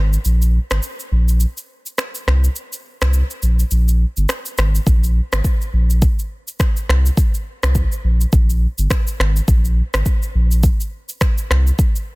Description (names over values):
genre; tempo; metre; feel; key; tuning
afrobeats; 104 BPM; 4/4; swing 58% on 16ths; unclear; A4 = 440 Hz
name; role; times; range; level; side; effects
saturated sub bass; bass; 0.0-11.7 s; G1 to C2; -14 LUFS; equal; none
afro-pop drum kit; drums; 0.1-12.1 s; finger snaps, kick drum, rim click, shaker; -18 LUFS; equal; soft clipping on snare
room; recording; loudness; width
digital ambience; dense, heavily limited modern master; -15 LUFS; side -25 dB against mid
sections
0.0-12.2 A section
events
break 0.0-4.9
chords
none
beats
| 0.25 0.83 1.40 1.98 | 2.56 3.13 3.71 4.29 | 4.87 5.44 6.02 6.60 | 7.17 7.75 8.33 8.90 | 9.48 10.06 10.63 11.21 | 11.79